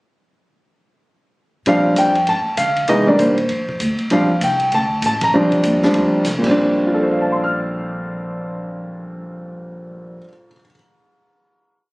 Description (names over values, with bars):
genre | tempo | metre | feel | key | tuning
jazz piano trio | 196 BPM | 4/4 | swing 62% on 8ths | Bb major | A4 = 439 Hz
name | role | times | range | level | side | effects
clear concert grand piano | melody | 1.7-10.8 s | Bb2 to F6 | -16 LUFS | equal | plate reverb
upright bass | bass | 1.7-10.2 s | A1 to D3 | -26 LUFS | equal | none
vintage drum kit | drums | 1.7-6.5 s | crash cymbal, hi-hat, kick drum, ride cymbal, snare drum | -28 LUFS | equal | none
room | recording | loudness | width
moderate small room reverb, RT60 0.6 s | recorded on a phone in the room, club reverb | -15 LUFS | side -22 dB against mid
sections
1.7-6.6 A section; 6.6-9.0 final chord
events
band accent 5.2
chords
1.7 Bb69; 2.3 Gsus2; 2.9 Cm9; 3.5 F5; 4.1 Bb69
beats
| 1.66 1.97 2.28 2.58 | 2.89 3.19 3.50 3.81 | 4.11 4.42 4.72 5.03 | 5.33 5.64 5.94 6.25 | 6.56 6.86 7.17 7.47 | 7.78 8.09 8.39 8.70